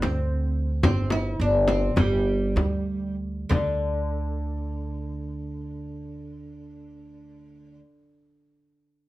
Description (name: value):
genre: Turkish makam ensemble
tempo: 185-226 BPM (eighths)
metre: 9/8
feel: straight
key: unclear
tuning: A4 = 440 Hz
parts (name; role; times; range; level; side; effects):
- oud; melody; 0.0-7.8 s; D3 to E4-40c; -29 LUFS; equal; none
- upright bass; bass; 0.0-7.8 s; G1 to D2; -27 LUFS; right 1 dB; none
- frame drum; percussion; 0.0-3.8 s; none; -24 LUFS; left 1 dB; none
room: light reverb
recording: none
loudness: -23 LUFS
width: side -16 dB against mid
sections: 0.0-3.5 A section; 3.5-6.4 B section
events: slowing down 0.0-3.5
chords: none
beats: 0.03 0.30 0.57 | 0.84 1.11 1.40 1.68 1.97 2.27 2.57 2.87 3.19 | 3.51 3.83 4.16 4.48 4.81 5.13 5.46 5.78 6.11